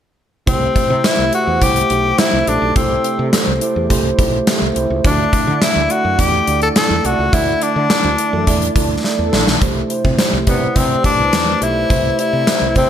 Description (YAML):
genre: 1980s-style pop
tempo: 105 BPM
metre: 4/4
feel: straight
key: unclear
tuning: A4 = 440 Hz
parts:
  - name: breathy tenor saxophone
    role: melody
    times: 0.5-12.9 s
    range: B3 to A4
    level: -17 LUFS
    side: left 3 dB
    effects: digital delay
  - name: mellow tine electric piano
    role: accompaniment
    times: 0.5-12.9 s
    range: C3 to E5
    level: -20 LUFS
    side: right 4 dB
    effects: analog chorus
  - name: woody fretless electric bass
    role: bass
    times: 0.5-12.9 s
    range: Bb1 to D3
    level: -21 LUFS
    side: equal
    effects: none
  - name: gated 80s drum kit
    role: drums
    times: 0.5-12.9 s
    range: hi-hat, kick drum, snare drum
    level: -16 LUFS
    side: equal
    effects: gated reverb
  - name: mellow synth brass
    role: stabs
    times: 8.3-9.6 s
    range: E3 to A4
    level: -24 LUFS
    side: equal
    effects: chorus
room: moderate plate reverb, RT60 1.7 s, small room ambience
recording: bright 1980s-style digital production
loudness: -13 LUFS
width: side -9 dB against mid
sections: 0.5-9.6 A section; 9.6-12.9 B section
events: band accent 7.3-9.6; drum fill 9.0-9.6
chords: 0.5 C6; 5.0 Dsus2; 9.6 C6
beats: | 0.47 1.04 1.62 2.19 | 2.76 3.33 3.90 4.47 | 5.04 5.62 6.19 6.76 | 7.33 7.90 8.47 9.04 | 9.62 10.19 10.76 11.33 | 11.90 12.47